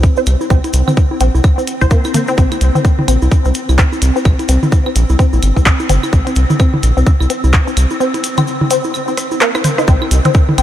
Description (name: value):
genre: minimal techno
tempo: 128 BPM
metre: 4/4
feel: swing 60% on 16ths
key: unclear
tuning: A4 = 439 Hz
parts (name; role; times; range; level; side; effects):
- round analog bass; bass; 0.0-10.6 s; G1 to C2; -12 LUFS; equal; sidechain pumping
- electronic kick drum; drums; 0.0-10.5 s; none; -11 LUFS; equal; none
- cabasa; percussion; 0.0-10.6 s; none; -29 LUFS; left 3 dB; none
- swarming drone; texture; 0.0-10.6 s; C4; -25 LUFS; right 1 dB; built-in reverb, ensemble chorus, sidechain pumping
- resonant blip pluck; riff; 0.2-10.6 s; Bb3 to C5; -19 LUFS; left 1 dB; phaser, sidechain pumping, analog delay
- electronic bongos, claves and toms; percussion; 0.2-10.6 s; none; -19 LUFS; equal; analog delay
- minimal click drum kit; drums; 0.3-10.6 s; handclaps, hi-hat, rim click; -20 LUFS; equal; none
room: light reverb, digital ambience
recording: none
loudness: -11 LUFS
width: side -12 dB against mid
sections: 0.0-9.9 A section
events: break 8.0-9.9; drum fill 9.2-9.9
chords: none